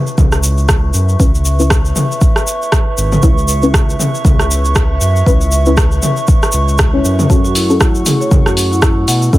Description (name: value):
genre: afro house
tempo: 118 BPM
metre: 4/4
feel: swing 57% on 16ths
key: C# minor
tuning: A4 = 439 Hz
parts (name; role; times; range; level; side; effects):
- dark analog pad; sustained chords; 0.0-9.4 s; A3 to C#6; -21 LUFS; right 2 dB; lush chorus, sidechain pumping
- deep mellow chord stab; stabs; 0.0-9.4 s; C#4 to C#5; -18 LUFS; left 2 dB; chorus, cassette tape, sidechain pumping, digital delay
- tube shaker; percussion; 0.1-9.4 s; none; -22 LUFS; left 1 dB; none
- smooth synth bass; bass; 0.2-9.4 s; G#1 to B2; -15 LUFS; equal; sidechain pumping
- deep house drum kit; drums; 0.2-9.2 s; hi-hat, rim click, toms; -17 LUFS; equal; none
- electronic kick drum; drums; 0.2-9.4 s; none; -12 LUFS; equal; none
- marimba with medium mallets; arpeggios; 7.4-9.4 s; E4 to F#5; -17 LUFS; equal; sidechain pumping, digital delay
room: little or no reverb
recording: none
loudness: -10 LUFS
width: side -16 dB against mid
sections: 0.0-9.4 A section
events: filter sweep on synth stab 0.0-9.4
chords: 0.0 C#m7; 7.3 F#m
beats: 0.18 0.69 | 1.20 1.71 2.21 2.72 | 3.23 3.74 4.25 4.76 | 5.26 5.77 6.28 6.79 | 7.30 7.81 8.31 8.82 | 9.33